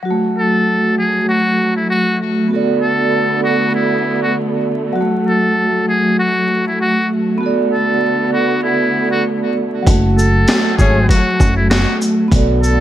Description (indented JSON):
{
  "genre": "hip hop, boom-bap hip-hop",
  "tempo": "98 BPM",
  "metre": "4/4",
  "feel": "swing 56% on 16ths",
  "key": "F# minor",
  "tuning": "A4 = 440 Hz",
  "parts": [
    { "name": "vibraphone with medium mallets", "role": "accompaniment", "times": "0.0-12.8 s", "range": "F#3 to D5", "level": "-16 LUFS", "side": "right 1 dB", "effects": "high-pass filter, low-pass filter" },
    { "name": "dark studio string section", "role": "sustained chords", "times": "0.1-12.8 s", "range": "D3 to B3", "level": "-22 LUFS", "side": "equal", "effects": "high-pass filter, low-pass filter" },
    { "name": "trumpet with metal mute", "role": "melody", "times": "0.4-12.8 s", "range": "E4 to A4", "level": "-18 LUFS", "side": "left 1 dB", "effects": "high-pass filter, low-pass filter, ping-pong delay" },
    { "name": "deep dub fingered electric bass", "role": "bass", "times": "9.9-12.8 s", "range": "F#1 to B1", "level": "-14 LUFS", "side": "equal", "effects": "none" },
    { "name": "boom bap sampler-style drum kit", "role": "drums", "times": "9.9-12.8 s", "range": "hi-hat, kick drum, shaker, snare drum", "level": "-14 LUFS", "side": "equal", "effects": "none" },
    { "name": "mellow horn section", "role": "stabs", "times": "10.8-11.2 s", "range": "A3 to C#5", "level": "-22 LUFS", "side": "left 4 dB", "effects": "high-pass filter, low-pass filter, ping-pong delay" }
  ],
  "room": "light reverb",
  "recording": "vinyl crackle",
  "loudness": "-13 LUFS",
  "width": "side -12 dB against mid",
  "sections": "0.1-12.8 A section",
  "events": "none",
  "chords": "0.1 F#m; 2.5 Bm7; 5.0 F#m; 7.4 Bm7; 9.9 F#madd9",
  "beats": "| 0.07 0.68 1.29 1.91 | 2.52 3.13 3.74 4.36 | 4.97 5.58 6.19 6.80 | 7.42 8.03 8.64 9.25 | 9.87 10.48 11.09 11.70 | 12.31"
}